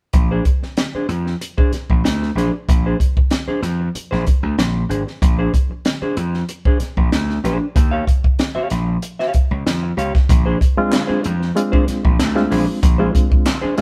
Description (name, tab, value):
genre	funk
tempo	94 BPM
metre	4/4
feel	straight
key	Bb mixolydian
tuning	A4 = 436 Hz
part	semi-hollow electric guitar	accompaniment	0.1-13.8 s	D4 to F5	-26 LUFS	equal	none
part	gritty slap bass	bass	0.1-13.8 s	Ab1 to F2	-23 LUFS	equal	overdrive
part	compact cocktail drum kit	drums	0.1-13.8 s	hi-hat, kick drum, snare drum	-19 LUFS	equal	none
part	barky reed electric piano	stabs	10.8-13.8 s	Ab3 to F4	-22 LUFS	equal	overdrive, medium tremolo
part	group handclap	percussion	10.9-13.6 s	none	-31 LUFS	equal	none
room	light reverb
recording	band playing live in one room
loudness	-18 LUFS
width	mono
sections	0.1-10.3 A section; 10.3-13.8 B section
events	none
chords	0.1 Bb9; 7.8 Eb9 (rootless); 10.3 Bb9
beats	| 0.14 0.77 1.41 2.04 | 2.68 3.31 3.95 4.58 | 5.22 5.85 6.49 7.12 | 7.76 8.39 9.03 9.66 | 10.30 10.93 11.56 12.20 | 12.83 13.47